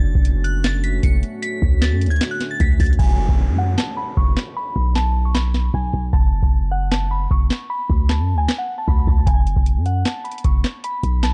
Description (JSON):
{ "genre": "hip hop, trap", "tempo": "153 BPM", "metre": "4/4", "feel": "half-time", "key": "F# minor", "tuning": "A4 = 438 Hz", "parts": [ { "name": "glassy synth bell", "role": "melody", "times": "0.0-11.3 s", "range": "F#5 to C#7", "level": "-30 LUFS", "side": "equal", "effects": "chorus, phaser, low-pass filter, delay" }, { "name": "deep dark ambient pad", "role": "sustained chords", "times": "0.0-3.0 s", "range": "A3 to F#4", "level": "-34 LUFS", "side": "equal", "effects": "chorus, built-in reverb" }, { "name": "long sustained 808-style bass", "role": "bass", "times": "0.0-11.3 s", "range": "F#1 to F#2", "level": "-21 LUFS", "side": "equal", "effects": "none" }, { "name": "booming analog drum machine", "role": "drums", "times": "0.2-11.3 s", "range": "crash cymbal, handclaps, hi-hat, kick drum, snare drum", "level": "-21 LUFS", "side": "equal", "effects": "none" }, { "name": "downlifter", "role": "sound effects", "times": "3.0-6.1 s", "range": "none", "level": "-36 LUFS", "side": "equal", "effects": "none" } ], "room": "little or no reverb", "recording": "dark, warm production, nothing above 10.9 kHz", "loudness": "-19 LUFS", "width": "mono", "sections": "0.0-3.0 A section; 3.0-11.3 B section", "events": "hi-hats muted 3.0-9.3; filter sweep on synth bell 3.0-11.3", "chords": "0.0 F#m; 1.4 Dmaj7; 3.0 F#sus2; 4.6 N.C.; 6.1 F#m; 7.7 D5; 9.3 F#sus2" }